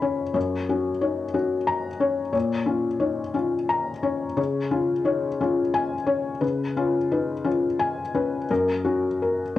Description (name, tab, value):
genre	neoclassical minimalist piano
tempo	59 BPM (dotted quarters)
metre	6/8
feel	uneven beats, rubato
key	unclear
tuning	A4 = 439 Hz
part	felt-muted upright piano	solo	0.0-9.6 s	Gb2 to Cb6	-22 LUFS	left 3 dB	cassette tape
room	moderate studio reverb, RT60 0.6 s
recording	home recording on cassette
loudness	-22 LUFS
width	side -13 dB against mid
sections	0.0-9.6 A section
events	none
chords	0.4 Gb; 2.3 Bbm; 4.4 Db; 6.4 Db7; 8.5 Gb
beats	| 0.35 1.36 | 2.35 3.35 | 4.38 5.40 | 6.43 7.45 | 8.50 9.57